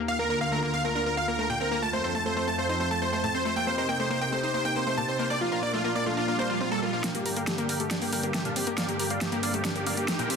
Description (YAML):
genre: uplifting trance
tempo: 138 BPM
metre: 4/4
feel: straight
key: unclear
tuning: A4 = 440 Hz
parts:
  - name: lush unison pad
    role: sustained chords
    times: 0.0-10.4 s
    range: D2 to A4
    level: -32 LUFS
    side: equal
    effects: chorus
  - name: analog pluck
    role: arpeggios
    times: 0.0-10.3 s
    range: A2 to Bb4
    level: -33 LUFS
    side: left 2 dB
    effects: chorus, ping-pong delay
  - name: dense compressed supersaw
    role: melody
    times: 0.1-10.4 s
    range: F4 to A5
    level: -29 LUFS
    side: equal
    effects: low-pass filter, ping-pong delay
  - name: clear concert grand piano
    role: second line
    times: 0.1-7.0 s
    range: F4 to A5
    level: -34 LUFS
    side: equal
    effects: ping-pong delay
  - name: swell and riser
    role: sound effects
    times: 6.3-10.4 s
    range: none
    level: -37 LUFS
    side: right 6 dB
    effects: none
  - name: big-room dance drum kit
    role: drums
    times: 7.0-10.4 s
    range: hi-hat, snare drum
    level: -30 LUFS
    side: right 1 dB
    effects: overdrive
room: moderate lush hall reverb, RT60 2.2 s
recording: dense, heavily limited modern master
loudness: -25 LUFS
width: side -6 dB against mid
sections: 0.0-7.0 A section; 7.0-10.4 B section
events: filter sweep on analog synth pad 0.0-7.0; swell 6.3-7.0; build-up 7.0-10.4; drum fill 7.0-10.4; filter sweep on supersaw synth 7.0-10.4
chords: 0.1 Bb/D; 1.8 F; 3.6 Cm; 5.3 Bb; 7.0 Gm